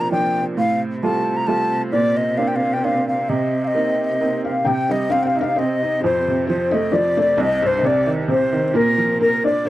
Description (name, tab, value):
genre	celtic folk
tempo	132 BPM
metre	3/4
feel	swing 54% on 8ths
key	C dorian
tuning	A4 = 440 Hz
part	bright baroque flute	melody	0.0-9.7 s	Bb4 to Bb5	-20 LUFS	left 1 dB	none
part	clear upright piano	accompaniment	0.0-9.7 s	C2 to F4	-21 LUFS	right 3 dB	none
part	rich cello	drone	0.0-9.7 s	C3	-29 LUFS	equal	none
part	felt-muted upright piano	second line	4.4-9.7 s	Bb4 to G5	-23 LUFS	left 5 dB	none
room	light reverb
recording	dry, close 1970s-style studio recording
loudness	-17 LUFS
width	side -15 dB against mid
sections	0.0-4.7 A section; 4.7-9.7 B section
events	none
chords	0.0 Bb; 0.6 Fadd9/A; 1.9 Bbadd9; 3.3 Cm7; 4.7 Cm; 6.0 F; 7.4 Cm; 8.7 Bb